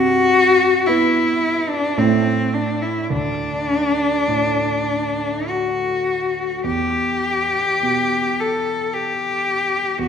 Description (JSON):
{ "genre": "classical, romantic duo for cello and grand piano", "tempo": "50-58 BPM", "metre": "3/4", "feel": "rubato", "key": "unclear", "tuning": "A4 = 440 Hz", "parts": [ { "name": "rich cello", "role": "melody", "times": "0.0-10.1 s", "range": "C4 to A4", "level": "-18 LUFS", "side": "left 2 dB", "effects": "none" }, { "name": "warm concert grand piano", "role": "accompaniment", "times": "0.0-10.1 s", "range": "D2 to E4", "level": "-24 LUFS", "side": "right 4 dB", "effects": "none" } ], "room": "wet concert hall reverb, RT60 1.8 s", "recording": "minimal, uncompressed stereo recording", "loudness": "-17 LUFS", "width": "side -7 dB against mid", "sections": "0.0-10.1 A section", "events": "none", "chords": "0.0 Cmaj7; 2.0 Am; 3.1 D; 6.6 E5" }